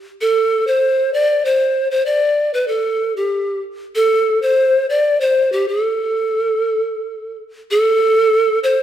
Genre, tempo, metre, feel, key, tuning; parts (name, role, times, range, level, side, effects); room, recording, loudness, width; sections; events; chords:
andean folk; 96 BPM; 3/4; straight; A minor; A4 = 444 Hz
polished pan flute; solo; 0.2-8.8 s; G4 to D5; -14 LUFS; equal
moderate recital hall reverb, RT60 1.6 s; -14 LUFS; side -10 dB against mid
0.0-7.7 A section; 7.7-8.8 B section